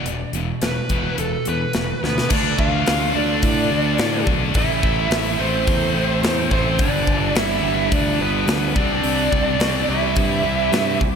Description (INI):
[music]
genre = hard rock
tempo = 107 BPM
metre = 4/4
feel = straight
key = unclear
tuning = A4 = 440 Hz
[part]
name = scooped high-gain guitar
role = riff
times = 0.0-11.0 s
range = E2 to D4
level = -26 LUFS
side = left 12 dB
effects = distortion, slapback echo
[part]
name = sludgy distorted guitar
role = riff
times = 0.0-11.0 s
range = E2 to D4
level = -27 LUFS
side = right 11 dB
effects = overdrive
[part]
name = growling fingered electric bass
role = bass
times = 0.1-11.2 s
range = E1 to A2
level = -25 LUFS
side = equal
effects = overdrive
[part]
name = tight metal drum kit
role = drums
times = 0.1-11.1 s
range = crash cymbal, hi-hat, kick drum, snare drum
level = -23 LUFS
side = equal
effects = none
[part]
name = dark smooth lead guitar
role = melody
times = 0.6-11.0 s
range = A4 to F5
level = -24 LUFS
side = right 1 dB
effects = overdrive, slapback echo, tape echo
[part]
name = octave-fuzz lead guitar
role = second line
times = 2.0-11.0 s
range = B3 to F4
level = -28 LUFS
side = right 2 dB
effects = distortion, slapback echo
[part]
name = bright tonewheel organ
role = sustained chords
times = 2.3-11.2 s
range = G3 to F5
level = -34 LUFS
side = equal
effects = none
[part]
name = scooped high-gain guitar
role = riff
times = 2.3-11.0 s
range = G2 to D4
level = -27 LUFS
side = equal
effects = distortion
[sound]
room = moderate lush hall reverb, RT60 2.2 s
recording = big arena sound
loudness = -17 LUFS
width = side -6 dB against mid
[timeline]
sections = 0.0-2.3 A section; 2.3-11.2 B section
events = drum fill 2.0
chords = 0.0 E5; 2.3 Dm; 4.6 Am; 6.8 G; 8.8 C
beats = | 0.06 0.62 1.19 1.75 | 2.31 2.87 3.44 4.00 | 4.56 5.12 5.68 6.24 | 6.80 7.36 7.92 8.48 | 9.04 9.60 10.16 10.72